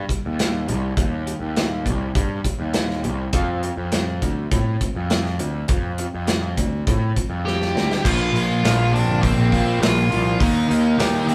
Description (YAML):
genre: quiet-loud alternative rock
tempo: 102 BPM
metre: 4/4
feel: straight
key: unclear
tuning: A4 = 443 Hz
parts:
  - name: electric guitar through a small old amp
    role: arpeggios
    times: 0.0-11.3 s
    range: Bb2 to G4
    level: -31 LUFS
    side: equal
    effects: none
  - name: fuzz picked electric bass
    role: bass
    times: 0.0-11.2 s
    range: G1 to A2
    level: -26 LUFS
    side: equal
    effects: overdrive
  - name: big rock drum kit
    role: drums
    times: 0.1-11.3 s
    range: crash cymbal, hi-hat, kick drum, snare drum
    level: -26 LUFS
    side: equal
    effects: none
  - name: octave-fuzz lead guitar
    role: melody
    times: 7.5-11.3 s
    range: C4 to G5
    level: -27 LUFS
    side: equal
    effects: distortion
  - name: thick fuzz guitar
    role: riff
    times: 8.0-11.3 s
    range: Bb2 to Eb4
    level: -23 LUFS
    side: equal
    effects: distortion
room: light reverb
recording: band playing live in one room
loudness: -21 LUFS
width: mono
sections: 0.0-8.1 A section; 8.1-11.3 B section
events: drum fill 7.5-8.1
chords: 0.0 Eb; 3.3 F5; 8.1 Bbsus2; 10.4 Eb